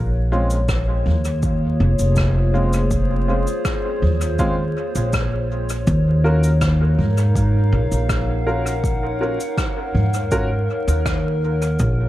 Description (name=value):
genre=ambient dub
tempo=81 BPM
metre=4/4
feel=straight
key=unclear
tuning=A4 = 440 Hz
part: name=warbly tape-like pad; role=sustained chords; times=0.0-12.1 s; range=Bb3 to Gb5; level=-25 LUFS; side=left 1 dB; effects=chorus, built-in reverb
part: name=upright bass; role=bass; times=0.0-12.1 s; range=F1 to Ab2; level=-18 LUFS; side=equal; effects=tube saturation
part: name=warm upright piano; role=stabs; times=0.3-10.5 s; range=Ab3 to Bb4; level=-27 LUFS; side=equal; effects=dub echo
part: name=soft-mallet drum kit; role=drums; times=0.5-11.9 s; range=cabasa, rim click, toms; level=-29 LUFS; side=equal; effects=dub echo
part: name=electronic kick drum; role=drums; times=0.7-11.9 s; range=none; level=-24 LUFS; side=equal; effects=none
room=small room ambience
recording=echo-heavy mix, vinyl crackle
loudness=-17 LUFS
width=side -15 dB against mid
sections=0.0-12.1 A section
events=none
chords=0.0 Bbm9; 5.9 Ebm9